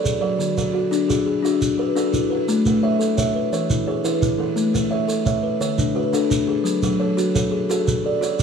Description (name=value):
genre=southern african traditional, mbira-style interlocking cycle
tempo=115 BPM (dotted quarters)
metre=12/8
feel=straight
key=A major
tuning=A4 = 440 Hz
part: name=buzzing kalimba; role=arpeggios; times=0.0-8.4 s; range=D3 to D5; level=-24 LUFS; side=right 3 dB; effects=none
part: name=kalimba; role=arpeggios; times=0.0-8.4 s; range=D3 to E5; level=-21 LUFS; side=left 3 dB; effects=none
part: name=shekere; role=percussion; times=0.1-8.4 s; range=none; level=-26 LUFS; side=right 2 dB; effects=none
room=moderate stone room reverb, RT60 1.0 s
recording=band playing live in one room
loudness=-18 LUFS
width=side -6 dB against mid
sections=0.0-2.5 A section; 2.5-8.4 A section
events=none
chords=0.4 D; 2.5 A; 3.5 E; 4.6 A; 5.6 D; 6.7 F#m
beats=| 0.40 0.92 1.44 1.96 | 2.48 3.00 3.52 4.05 | 4.57 5.09 5.61 6.13 | 6.66 7.18 7.70 8.22